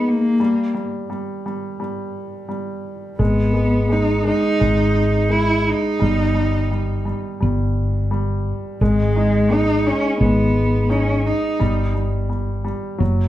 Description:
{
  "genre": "acoustic folk-pop ballad",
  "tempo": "86 BPM",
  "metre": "4/4",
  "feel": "straight",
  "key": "G# harmonic minor",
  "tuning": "A4 = 440 Hz",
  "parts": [
    { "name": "warm cello", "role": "melody", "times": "0.0-11.9 s", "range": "G#3 to E4", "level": "-20 LUFS", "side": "equal", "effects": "slapback echo" },
    { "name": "clear upright piano", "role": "accompaniment", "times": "0.0-13.3 s", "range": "F#3 to D#4", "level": "-23 LUFS", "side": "equal", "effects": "none" },
    { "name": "woody fretless electric bass", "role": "bass", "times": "3.2-13.3 s", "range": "F#1 to G#1", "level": "-19 LUFS", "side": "left 1 dB", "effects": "none" }
  ],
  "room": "wet studio reverb, RT60 0.8 s",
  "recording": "heard from further back in the room",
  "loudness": "-17 LUFS",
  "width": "side -13 dB against mid",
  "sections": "0.0-13.3 A section",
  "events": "none",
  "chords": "0.4 N.C.; 3.2 G#m; 6.0 D#/G; 8.8 G#m; 11.6 D#/G",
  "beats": "| 0.40 1.09 1.79 2.50 | 3.20 3.90 4.61 5.31 | 6.01 6.71 7.41 8.11 | 8.80 9.50 10.20 10.90 | 11.60 12.30 13.01"
}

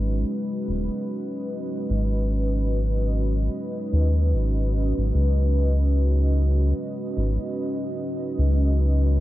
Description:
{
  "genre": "ambient dub",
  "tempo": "74 BPM",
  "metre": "4/4",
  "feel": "swing 59% on 16ths",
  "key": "unclear",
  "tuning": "A4 = 440 Hz",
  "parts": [
    { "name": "deep dark ambient pad", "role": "sustained chords", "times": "0.0-9.2 s", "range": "G#3 to D#5", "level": "-27 LUFS", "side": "right 1 dB", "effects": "chorus, built-in reverb, cassette tape" },
    { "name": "round analog bass", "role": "bass", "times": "0.0-9.2 s", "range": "D#1 to D#2", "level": "-20 LUFS", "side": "equal", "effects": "none" }
  ],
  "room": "little or no reverb",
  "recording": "home recording on cassette",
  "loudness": "-21 LUFS",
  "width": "side -15 dB against mid",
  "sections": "0.0-9.2 A section",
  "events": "none",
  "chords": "0.0 G#m7; 5.1 C#7(no3)",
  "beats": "0.28 1.09 | 1.90 2.71 3.52 4.33 | 5.14 5.95 6.76 7.58 | 8.39 9.20"
}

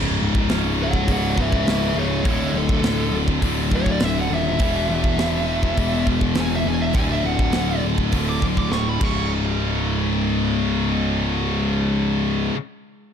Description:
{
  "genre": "heavy metal",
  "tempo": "102 BPM",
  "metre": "4/4",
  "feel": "straight",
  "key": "C# phrygian",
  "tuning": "A4 = 440 Hz",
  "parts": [
    { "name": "high-gain distorted guitar", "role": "riff", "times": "0.0-12.6 s", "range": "C#2 to E3", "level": "-26 LUFS", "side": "right 15 dB", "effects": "distortion" },
    { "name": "scooped high-gain guitar", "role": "riff", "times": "0.0-12.6 s", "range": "C#2 to E3", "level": "-25 LUFS", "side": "left 12 dB", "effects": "distortion" },
    { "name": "fuzz picked electric bass", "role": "bass", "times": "0.0-12.5 s", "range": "C#1 to E1", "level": "-23 LUFS", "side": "equal", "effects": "overdrive" },
    { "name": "tight metal drum kit", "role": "drums", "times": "0.3-9.1 s", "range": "crash cymbal, hi-hat, kick drum, snare drum", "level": "-24 LUFS", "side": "equal", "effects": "none" },
    { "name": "high-gain lead guitar", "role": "melody", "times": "0.8-9.3 s", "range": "G#4 to D6", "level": "-27 LUFS", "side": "equal", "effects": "distortion, digital delay" }
  ],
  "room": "small room ambience",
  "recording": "dark, warm production",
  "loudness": "-18 LUFS",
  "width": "side -8 dB against mid",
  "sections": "0.0-9.3 A section; 9.3-11.7 B section",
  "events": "lead electric guitar solo 0.0-9.3; drum fill 8.7-9.3",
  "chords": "0.0 C#5; 2.2 D5; 4.6 E5; 7.0 D; 9.0 C#5",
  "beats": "0.48 1.07 1.66 | 2.25 2.83 3.42 4.01 | 4.60 5.18 5.77 6.36 | 6.95 7.54 8.13 8.72 | 9.31 9.90 10.49 11.08"
}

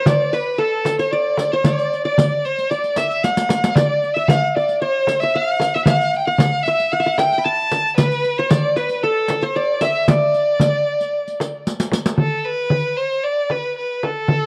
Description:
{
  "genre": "Arabic maqam ensemble",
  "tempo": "114 BPM",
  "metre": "4/4",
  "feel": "straight",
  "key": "D maqam rast",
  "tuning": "A4 = 440 Hz",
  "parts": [
    { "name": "clear violin", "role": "melody", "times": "0.0-14.5 s", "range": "A4 to A5", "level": "-22 LUFS", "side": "equal", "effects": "cassette tape" },
    { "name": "qanun", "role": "second line", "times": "0.0-11.6 s", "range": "A4 to B5", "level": "-24 LUFS", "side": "equal", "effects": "cassette tape" },
    { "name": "frame drum", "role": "percussion", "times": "0.1-14.4 s", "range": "none", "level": "-21 LUFS", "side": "equal", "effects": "none" },
    { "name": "riq", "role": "percussion", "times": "0.1-12.2 s", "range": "none", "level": "-25 LUFS", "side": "equal", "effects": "none" }
  ],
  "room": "light reverb, small room ambience",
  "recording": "home recording on cassette",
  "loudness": "-19 LUFS",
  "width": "mono",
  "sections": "0.0-12.2 A section; 12.2-14.5 B section",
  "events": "drum fill 3.2-3.8, 11.7-12.2",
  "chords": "none",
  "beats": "0.06 0.59 1.12 | 1.65 2.18 2.71 3.23 | 3.76 4.29 4.81 5.34 | 5.87 6.39 6.92 7.44 | 7.97 8.50 9.02 9.55 | 10.07 10.60 11.13 11.65 | 12.18 12.71 13.23 13.76 | 14.29"
}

